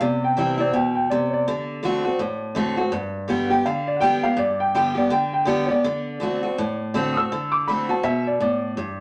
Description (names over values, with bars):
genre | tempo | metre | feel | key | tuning
rock | 164 BPM | 4/4 | swing 60% on 8ths | unclear | A4 = 436 Hz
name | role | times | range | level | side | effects
dark upright piano | melody | 0.0-8.8 s | C#5 to E6 | -25 LUFS | equal | none
picked steel-string acoustic guitar | accompaniment | 0.0-9.0 s | G2 to G4 | -25 LUFS | equal | none
room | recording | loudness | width
moderate studio reverb, RT60 0.8 s | none | -22 LUFS | mono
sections
0.0-8.8 A section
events
none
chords
0.0 C; 1.5 D7; 2.9 G; 5.8 D7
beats
| 0.02 0.38 0.74 1.11 | 1.47 1.84 2.20 2.56 | 2.93 3.29 3.66 4.02 | 4.39 4.75 5.12 5.48 | 5.85 6.21 6.58 6.95 | 7.31 7.68 8.04 8.41 | 8.77